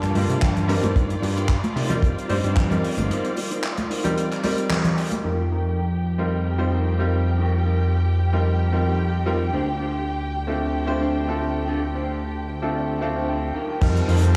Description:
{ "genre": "nu-disco, nu disco", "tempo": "112 BPM", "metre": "4/4", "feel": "straight", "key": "unclear", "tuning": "A4 = 438 Hz", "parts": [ { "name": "bright grand piano", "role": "accompaniment", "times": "0.0-14.4 s", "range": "D3 to A5", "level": "-29 LUFS", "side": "equal", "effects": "tape echo" }, { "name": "dark chamber string section", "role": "sustained chords", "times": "0.0-14.4 s", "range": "F4 to A5", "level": "-35 LUFS", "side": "equal", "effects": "sidechain pumping, low-pass filter" }, { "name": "mellow electric guitar", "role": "riff", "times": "0.0-14.4 s", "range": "D4 to Bb5", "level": "-34 LUFS", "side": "equal", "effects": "analog chorus, low-pass filter, tape echo" }, { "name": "fat analog bass", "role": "bass", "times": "0.0-14.4 s", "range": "G1 to C3", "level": "-25 LUFS", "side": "equal", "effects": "none" }, { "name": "damped 70s drum kit", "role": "drums", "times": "0.0-5.2, 13.8-14.3 s", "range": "crash cymbal, handclaps, hi-hat", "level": "-34 LUFS", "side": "equal", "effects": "low-pass filter on hats, low-pass filter on cymbals, low-pass filter on snare, low-pass filter on room" }, { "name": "congas and bongos", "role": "percussion", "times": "0.2-5.2 s", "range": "none", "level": "-30 LUFS", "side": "equal", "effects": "none" }, { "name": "kick drum", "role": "drums", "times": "0.4-2.7, 13.8-13.9 s", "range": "none", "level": "-22 LUFS", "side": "equal", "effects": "none" }, { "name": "downlifter", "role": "sound effects", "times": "13.8-14.4 s", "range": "none", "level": "-36 LUFS", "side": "equal", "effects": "none" } ], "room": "moderate plate reverb, RT60 2.4 s", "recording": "dreamy mix soaked in reverb, studio reverb", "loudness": "-23 LUFS", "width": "mono", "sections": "0.0-5.2 A section; 5.2-13.8 B section", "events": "clean electric guitar fill 0.0-1.0, 12.2-13.8; band accent 4.7; filter sweep on drum 5.2-13.8; filter sweep on clean electric guitar 5.2-13.8", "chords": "0.0 Gm7; 0.7 Cm7/G; 5.2 F7sus4; 9.5 Dm7; 13.6 F7sus4", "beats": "0.42 | 0.96 1.50 2.03 2.57 | 3.10 3.64 4.17 4.71 | 5.25 5.78 6.32 6.85 | 7.39 7.92 8.46 9.00 | 9.53 10.07 10.60 11.14 | 11.68 12.21 12.75 13.28 | 13.82 14.35" }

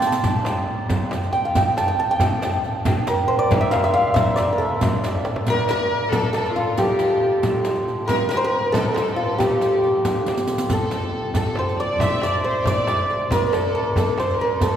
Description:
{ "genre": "Persian modal ensemble", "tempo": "92 BPM (dotted quarters)", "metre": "6/8", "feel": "straight", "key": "A dastgah shur", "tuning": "A4 = 438 Hz", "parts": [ { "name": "santur", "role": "melody", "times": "0.0-14.8 s", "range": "F4 to D6", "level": "-20 LUFS", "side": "equal", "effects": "none" }, { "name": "riq", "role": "percussion", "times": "0.0-14.7 s", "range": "none", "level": "-32 LUFS", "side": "right 2 dB", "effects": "none" }, { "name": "frame drum", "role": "percussion", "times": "0.2-14.7 s", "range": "none", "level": "-25 LUFS", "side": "left 2 dB", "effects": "none" }, { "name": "tombak", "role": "percussion", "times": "0.2-5.5, 10.7-14.7 s", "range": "none", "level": "-27 LUFS", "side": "right 1 dB", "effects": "none" }, { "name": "dark studio violin section", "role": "second line", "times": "5.5-14.8 s", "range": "F4 to E5", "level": "-28 LUFS", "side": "equal", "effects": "none" } ], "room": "wet cathedral reverb, RT60 5.5 s", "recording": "recorded in a church or concert hall", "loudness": "-18 LUFS", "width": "side -9 dB against mid", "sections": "0.0-5.5 A section; 5.5-14.8 B section", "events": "drum fill 0.0, 5.0-5.5, 10.3-10.7", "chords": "none", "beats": "| 0.24 0.90 | 1.55 2.20 | 2.86 3.51 | 4.16 4.82 | 5.47 6.12 | 6.78 7.43 | 8.08 8.73 | 9.39 10.04 | 10.70 11.35 | 12.00 12.66 | 13.31 13.96 | 14.62" }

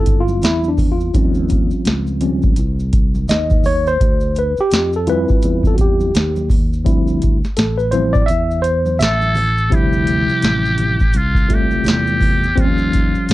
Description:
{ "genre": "hip hop, jazz-hop", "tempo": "84 BPM", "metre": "4/4", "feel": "swing 61% on 16ths", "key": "D dorian", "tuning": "A4 = 440 Hz", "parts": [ { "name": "tine electric piano", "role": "accompaniment", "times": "0.0-13.3 s", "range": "C3 to E5", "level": "-18 LUFS", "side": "left 1 dB", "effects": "overdrive, fast stereo tremolo" }, { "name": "sustaining fretless electric bass", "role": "bass", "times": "0.0-13.3 s", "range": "G1 to F2", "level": "-20 LUFS", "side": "equal", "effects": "analog chorus" }, { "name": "booming analog drum machine", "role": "drums", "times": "0.1-13.3 s", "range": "hi-hat, kick drum, snare drum", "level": "-16 LUFS", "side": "equal", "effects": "vintage 12-bit sampler grit" }, { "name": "maracas and congas", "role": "percussion", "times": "0.1-13.3 s", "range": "none", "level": "-30 LUFS", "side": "right 2 dB", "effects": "none" }, { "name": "trumpet with metal mute", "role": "melody", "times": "9.0-13.3 s", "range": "F4 to A4", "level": "-19 LUFS", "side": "equal", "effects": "none" } ], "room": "little or no reverb", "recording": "dark, warm production", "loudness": "-13 LUFS", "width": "side -16 dB against mid", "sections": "0.0-9.7 A section; 9.7-13.3 B section", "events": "tine electric piano solo 0.0-9.7; kick muted 8.3-9.7", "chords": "0.0 Dm11; 1.1 Eb13; 4.0 Dm11; 12.6 Eb9", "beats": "0.43 | 1.15 1.86 2.57 3.29 | 4.00 4.72 5.43 6.14 | 6.86 7.57 8.29 9.00 | 9.72 10.43 11.14 11.86 | 12.57 13.29" }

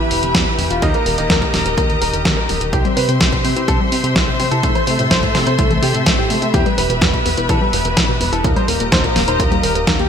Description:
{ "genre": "italo disco", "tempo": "126 BPM", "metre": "4/4", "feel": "straight", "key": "unclear", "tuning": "A4 = 438 Hz", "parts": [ { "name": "warm baby grand piano", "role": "melody", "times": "0.0-10.1 s", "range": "Eb3 to C5", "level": "-21 LUFS", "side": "equal", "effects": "analog chorus, ping-pong delay" }, { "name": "bright symphonic string section", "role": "sustained chords", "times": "0.0-10.1 s", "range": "G4 to C6", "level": "-21 LUFS", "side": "left 2 dB", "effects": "none" }, { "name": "bright electric grand piano", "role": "stabs", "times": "0.0-2.1 s", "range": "Bb3 to E5", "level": "-27 LUFS", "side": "right 2 dB", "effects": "low-pass filter, ping-pong delay" }, { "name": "chorused synth bass", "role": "bass", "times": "0.1-10.1 s", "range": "Eb1 to C3", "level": "-21 LUFS", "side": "equal", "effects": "tube saturation" }, { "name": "clean 12-bit digital drum machine", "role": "drums", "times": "0.1-10.1 s", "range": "hi-hat, snare drum", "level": "-19 LUFS", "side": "equal", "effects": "gated reverb" }, { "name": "electronic kick drum", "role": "drums", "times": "0.3-10.0 s", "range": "none", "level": "-20 LUFS", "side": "equal", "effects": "none" }, { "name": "warbly dusty pluck", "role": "arpeggios", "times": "2.7-10.0 s", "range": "A2 to Bb4", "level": "-24 LUFS", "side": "left 2 dB", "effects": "chorus, ping-pong delay" } ], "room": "moderate lush hall reverb, RT60 2.0 s, digital ambience", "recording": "bright 1980s-style digital production", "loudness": "-13 LUFS", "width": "side -7 dB against mid", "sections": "0.0-10.1 A section", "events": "none", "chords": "0.0 Em; 0.8 Eb; 2.7 C; 4.6 Am/C; 6.5 Em; 8.4 Eb", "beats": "0.35 | 0.82 1.30 1.78 2.25 | 2.73 3.21 3.68 4.16 | 4.63 5.11 5.59 6.06 | 6.54 7.02 7.49 7.97 | 8.44 8.92 9.40 9.87" }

